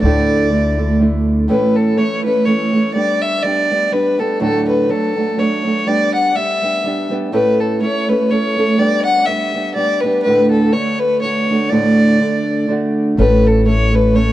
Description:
celtic folk; 123 BPM; 3/4; swing 55% on 8ths; D major; A4 = 440 Hz
dark fiddle; melody; 0.0-14.3 s; A4 to F#5; -17 LUFS; left 1 dB
fingerpicked old ladder-braced acoustic guitar; accompaniment; 0.0-14.3 s; D2 to A4; -16 LUFS; right 2 dB
upright bass; bass; 0.0-1.5, 13.2-14.3 s; A1 to D2; -16 LUFS; left 1 dB
moderate plate reverb, RT60 3.5 s; dark, warm production; -13 LUFS; side -14 dB against mid
0.0-1.5 A section; 1.5-13.2 B section; 13.2-14.3 B section
0.0 Dsus2; 1.5 A; 2.9 G; 4.4 D; 5.9 G; 7.3 A; 8.8 G; 10.3 D; 13.2 A

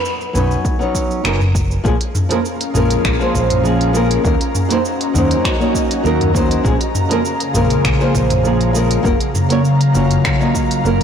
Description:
sunset chillout; 100 BPM; 4/4; straight; Bb minor; A4 = 440 Hz
deep house drum kit; drums; 0.1-11.0 s; finger snaps, hi-hat, shaker, toms; -21 LUFS; left 1 dB; soft clipping on snare
nylon-string guitar; accompaniment; 0.3-11.0 s; F3 to Eb5; -18 LUFS; moving between left 4 dB and right 4 dB; auto-pan, digital delay
mellow fretless electric bass; bass; 0.3-11.0 s; F#1 to Eb2; -18 LUFS; equal
electronic kick drum; drums; 0.6-10.7 s; -20 LUFS; equal
ethereal airy pad; sustained chords; 2.2-11.0 s; Db3 to Bb5; -19 LUFS; equal; ensemble chorus, built-in reverb, vintage 12-bit sampler grit
wet lush hall reverb, RT60 2.0 s; blown-out, overdriven recording, overdrive; -13 LUFS; side -8 dB against mid
0.0-1.8 A section; 1.8-11.0 B section
0.0 Badd9; 1.8 Bbm7; 4.2 Ebm7; 6.6 Bbm7; 9.0 Gbmaj7

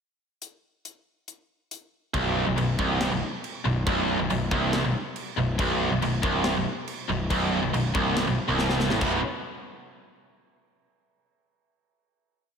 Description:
heavy metal; 139 BPM; 4/4; straight; A4 = 439 Hz
tight metal drum kit; drums; 0.4-9.1 s; crash cymbal, hi-hat, kick drum, snare drum; -32 LUFS; left 1 dB
scooped high-gain guitar; riff; 2.1-9.2 s; B1 to B2; -28 LUFS; left 8 dB; distortion
tight distorted guitar; riff; 2.1-9.2 s; B1 to B2; -27 LUFS; right 7 dB; distortion
fuzz picked electric bass; bass; 2.1-9.2 s; B0 to A1; -31 LUFS; left 1 dB; overdrive
moderate lush hall reverb, RT60 2.0 s, small room ambience; big arena sound; -23 LUFS; side -6 dB against mid
0.4-2.1 pickup bar; 2.1-9.0 riff; 9.0-10.7 final chord
drum fill 8.6-9.0
0.4 N.C.; 2.1 Amadd9/B (rootless); 9.0 B5

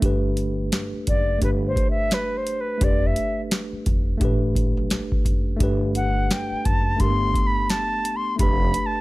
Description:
hip hop, jazz-hop; 86 BPM; 4/4; swing 60% on 16ths; G major; A4 = 440 Hz
mellow tine electric piano; accompaniment; 0.0-9.0 s; A3 to B4; -27 LUFS; equal; medium stereo tremolo
upright bass; bass; 0.0-8.7 s; F1 to B1; -26 LUFS; equal; tube saturation
booming analog drum machine; drums; 0.0-8.9 s; hi-hat, kick drum, snare drum; -23 LUFS; equal
reedy concert flute; melody; 1.1-9.0 s; B4 to C6; -24 LUFS; equal
small room reverb; dry, gritty hardware recording; -20 LUFS; side -19 dB against mid
0.0-9.0 A section
flute solo 0.0-9.0
0.0 Gmaj9; 1.4 Gadd9; 2.8 Fadd9; 4.2 Gmaj9; 7.0 Gadd9; 8.4 Fadd9

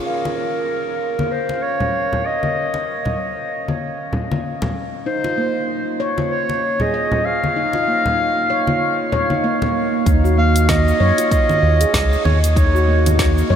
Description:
organic downtempo; 96 BPM; 4/4; swing 58% on 16ths; A4 = 440 Hz
bronze singing bowl; texture; 0.0-10.1 s; F5; -31 LUFS; equal; shimmer reverb
warm clarinet; melody; 0.1-13.1 s; Bb4 to F5; -20 LUFS; equal; tape echo, shimmer reverb
congas; percussion; 0.3-9.7 s; -26 LUFS; left 2 dB
handpan; arpeggios; 5.1-13.6 s; Bb3 to Eb5; -22 LUFS; equal; analog delay, shimmer reverb
round analog bass; bass; 10.1-13.6 s; Db2 to Gb2; -16 LUFS; equal
deep house drum kit; drums; 10.1-13.5 s; cabasa, congas, hi-hat, snare drum; -24 LUFS; right 2 dB; small room ambience
electronic kick drum; drums; 10.1-13.3 s; -18 LUFS; equal; small room ambience
wet huge ambient reverb, RT60 7.8 s; dreamy mix soaked in reverb; -16 LUFS; side -8 dB against mid
0.1-10.1 A section; 10.1-13.6 B section
0.1 N.C.; 10.1 Ebm7

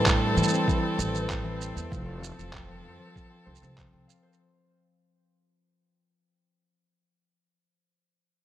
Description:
folktronica; 97 BPM; 4/4; straight; A4 = 440 Hz
rich string quartet; sustained chords; 0.0-4.4 s; F3 to A4; -31 LUFS; right 1 dB
concert harp; arpeggios; 0.0-6.9 s; E3 to F5; -30 LUFS; left 2 dB; tape echo
upright bass; bass; 0.0-4.0 s; F1 to A2; -32 LUFS; equal
electronic handclaps and shaker; drums; 0.1-4.4 s; -30 LUFS; right 2 dB
electronic kick drum; drums; 0.1-3.9 s; -29 LUFS; right 1 dB
light reverb; -25 LUFS; side -12 dB against mid
0.0-4.4 A section
fade-out 0.0-4.4
0.0 Am7; 1.9 F

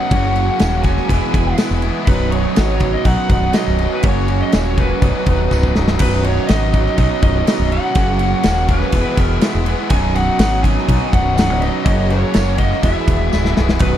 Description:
classic rock; 123 BPM; 4/4; straight; B major; A4 = 442 Hz
lead guitar through a small cranked amp; melody; 0.0-14.0 s; B4 to G#5; -22 LUFS; equal; overdrive, slapback echo
bright tonewheel organ; sustained chords; 0.0-14.0 s; A#3 to B4; -31 LUFS; equal
distorted electric guitar; riff; 0.0-14.0 s; B1 to F#4; -23 LUFS; left 14 dB; overdrive
raw garage guitar; riff; 0.0-14.0 s; B1 to F#4; -22 LUFS; right 13 dB; overdrive
modern bright fingered electric bass; bass; 0.1-14.0 s; B0 to B1; -18 LUFS; equal
big rock drum kit; drums; 0.1-13.9 s; crash cymbal, kick drum, snare drum; -18 LUFS; equal
tambourine; percussion; 0.6-13.4 s; -36 LUFS; right 9 dB
little or no reverb; dry, close 1970s-style studio recording; -13 LUFS; side -11 dB against mid
0.0-6.0 A section; 6.0-14.0 A section
drum fill 5.5-6.0, 13.3-13.8
0.1 F#add9; 1.1 E; 2.1 B; 4.0 F#add9; 5.0 B; 8.0 F#add9; 8.9 E; 9.9 B; 11.9 F#add9; 12.8 E

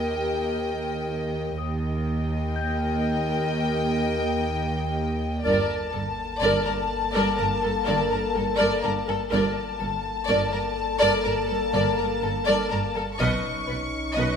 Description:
cinematic; 62 BPM; 4/4; straight; A4 = 442 Hz
dark studio violin section; melody; 0.0-14.4 s; G5 to C#6; -30 LUFS; left 5 dB
rich studio violin section; second line; 0.0-14.4 s; A4 to Eb5; -28 LUFS; left 1 dB
dark studio viola section; accompaniment; 0.0-14.4 s; Bb4 to B4; -30 LUFS; right 3 dB
mellow French horn section; sustained chords; 0.0-14.4 s; Bb3 to A4; -30 LUFS; left 4 dB
dark studio double bass section; bass; 0.0-14.2 s; G1 to Eb2; -31 LUFS; right 3 dB
warm studio cello section; bass; 0.0-14.2 s; Eb2 to B2; -31 LUFS; right 3 dB
deep rumbling drone; drone; 0.0-14.4 s; G1 to Eb2; -38 LUFS; equal; built-in reverb, phaser
large celesta; texture; 0.0-5.5, 13.2-14.4 s; G5 to Bb6; -36 LUFS; left 5 dB
wet scoring stage reverb, RT60 1.7 s; -22 LUFS; side -7 dB against mid
0.0-14.4 A section
0.0 Eb; 5.5 Gmadd9; 13.2 Badd9

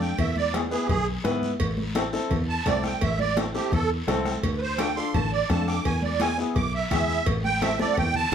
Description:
latin, cumbia; 170 BPM; 4/4; straight; A harmonic minor; A4 = 439 Hz
musette accordion; melody; 0.0-8.3 s; G4 to D6; -27 LUFS; right 6 dB
warm upright piano; accompaniment; 0.0-8.3 s; B3 to B4; -29 LUFS; left 4 dB
fingered electric bass; bass; 0.0-8.3 s; A1 to G#2; -28 LUFS; equal
congas; percussion; 0.0-8.3 s; -33 LUFS; equal
guiro; percussion; 0.0-8.3 s; -39 LUFS; left 1 dB
bombo; percussion; 0.2-8.3 s; -30 LUFS; left 2 dB
cowbell and timbales; percussion; 0.2-8.3 s; -35 LUFS; right 4 dB
moderate studio reverb, RT60 0.8 s; heard from further back in the room; -22 LUFS; side -8 dB against mid
0.0-8.3 A section
accordion solo 0.0-8.3; drum fill 7.6-8.3
0.2 E; 1.6 Am; 4.4 Dm; 5.9 E; 7.3 Am

